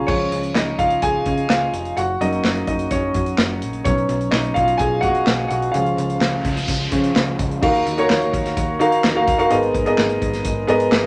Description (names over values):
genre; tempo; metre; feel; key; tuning
piano-driven pop; 127 BPM; 4/4; straight; unclear; A4 = 440 Hz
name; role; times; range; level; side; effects
warm concert grand piano; accompaniment; 0.0-11.1 s; Ab2 to Ab5; -21 LUFS; equal; none
plucky analog bass; bass; 0.0-11.1 s; F1 to Eb3; -28 LUFS; equal; none
modern studio drum kit; drums; 0.1-11.0 s; crash cymbal, handclaps, hi-hat, kick drum, snare drum; -25 LUFS; equal; none
noise sweep; sound effects; 6.1-7.6 s; none; -32 LUFS; equal; none
room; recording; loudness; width
wet studio ambience, RT60 0.5 s; none; -19 LUFS; mono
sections
0.1-7.6 A section; 7.6-11.1 B section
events
grand piano solo 0.1-7.6; noise sweep 6.1-7.6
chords
0.1 Db; 2.0 Gb; 3.9 B; 5.7 Db; 7.6 Ebmadd9; 9.5 Abmadd9